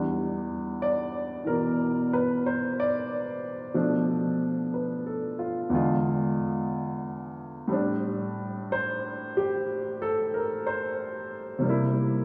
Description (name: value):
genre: solo jazz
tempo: 61 BPM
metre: 4/4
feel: swing 68% on 8ths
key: unclear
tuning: A4 = 440 Hz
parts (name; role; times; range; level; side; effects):
- warm baby grand piano; solo; 0.0-12.2 s; E2 to D5; -28 LUFS; equal; none
room: wet church reverb, RT60 3.6 s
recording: recorded in a church or concert hall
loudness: -28 LUFS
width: mono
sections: 0.0-12.2 A section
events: grand piano solo 0.0-12.2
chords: 0.0 Em7; 3.7 Bm7b5; 5.7 E7b9; 7.7 Am7; 11.6 C7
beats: 0.78 1.76 2.75 | 3.74 4.72 5.71 6.70 | 7.68 8.67 9.66 10.64 | 11.63